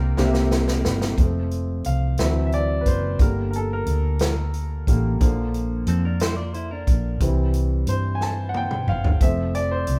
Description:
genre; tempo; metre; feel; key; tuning
slow gospel; 60 BPM (dotted quarters); 6/8; straight; F major; A4 = 437 Hz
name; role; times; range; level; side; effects
warm horn section; melody; 0.0-0.5 s; D4 to Bb4; -45 LUFS; equal; none
clear baby grand piano; accompaniment; 0.0-10.0 s; C3 to A5; -28 LUFS; equal; none
hollow-body short-scale fingered electric bass; bass; 0.0-10.0 s; F1 to G2; -26 LUFS; equal; none
natural country drum kit; drums; 0.2-10.0 s; hi-hat, kick drum, snare drum, toms; -24 LUFS; equal; none
clean electric guitar; second line; 5.9-7.2 s; C4 to D5; -35 LUFS; equal; phaser
room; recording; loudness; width
moderate large studio reverb, RT60 0.9 s; band playing live in one room; -22 LUFS; mono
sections
0.0-1.2 A section; 1.2-10.0 B section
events
drum fill 0.0-1.2, 8.2-9.2; grand piano solo 1.2-10.0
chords
0.2 C7; 1.2 F; 2.2 D7; 3.2 Gm; 5.2 Bb; 7.2 C; 9.2 F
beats
0.17 | 1.17 2.18 | 3.19 4.19 | 5.20 6.20 | 7.20 8.21 | 9.21

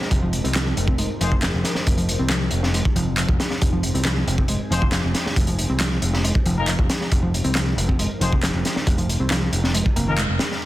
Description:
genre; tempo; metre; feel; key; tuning
breakbeat, breaks; 137 BPM; 4/4; straight; unclear; A4 = 440 Hz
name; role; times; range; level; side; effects
phased analog pad; sustained chords; 0.0-10.7 s; F3 to Bb4; -31 LUFS; equal; phaser, chorus, vintage 12-bit sampler grit, sidechain pumping
overdriven picked electric bass; riff; 0.0-10.3 s; Eb3 to C4; -26 LUFS; equal; vintage 12-bit sampler grit, low-pass filter, digital delay
crunchy breakbeat drum kit; drums; 0.0-10.6 s; hi-hat, kick drum, snare drum; -22 LUFS; equal; none
picked electric bass; bass; 0.1-10.4 s; F1 to C2; -23 LUFS; equal; none
punchy analog drum machine; drums; 0.6-10.7 s; handclaps, hi-hat; -28 LUFS; equal; low-pass filter on snare, low-pass filter on hats
mellow brass ensemble; stabs; 1.2-1.3, 4.7-10.7 s; Eb4 to C5; -30 LUFS; left 4 dB; vintage 12-bit sampler grit, digital delay
room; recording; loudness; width
light reverb, small room ambience; dense, heavily limited modern master; -18 LUFS; side -16 dB against mid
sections
0.0-10.6 A section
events
band accent 10.2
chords
0.0 Fm7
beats
| 0.11 0.55 0.99 1.42 | 1.86 2.30 2.74 3.18 | 3.61 4.05 4.49 4.93 | 5.37 5.80 6.24 6.68 | 7.12 7.56 7.99 8.43 | 8.87 9.31 9.74 10.18 | 10.62

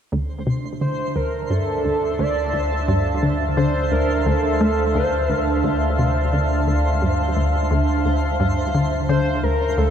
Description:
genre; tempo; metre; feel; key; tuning
ambient, sequencer-driven space music; 87 BPM; 4/4; straight; D minor; A4 = 440 Hz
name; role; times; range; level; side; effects
sweeping resonant pad; sustained chords; 0.1-9.9 s; D4 to A5; -24 LUFS; right 2 dB; chorus
resonant blip pluck; riff; 0.1-9.9 s; D2 to A3; -22 LUFS; left 1 dB; chorus, tape echo
round analog bass; bass; 0.1-9.9 s; D2; -24 LUFS; equal; none
twinkling granular texture; texture; 0.3-9.9 s; C5; -32 LUFS; equal; built-in reverb
pulse-width lead; melody; 0.8-9.9 s; A4 to D5; -25 LUFS; equal; chorus, tape echo
room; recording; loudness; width
wet cathedral reverb, RT60 6.2 s; in a vast, echoing space; -18 LUFS; side -8 dB against mid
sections
0.1-9.9 A section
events
none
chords
0.1 Dm7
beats
| 0.12 0.81 1.50 2.19 | 2.88 3.57 4.26 4.95 | 5.64 6.33 7.02 7.71 | 8.40 9.09 9.78

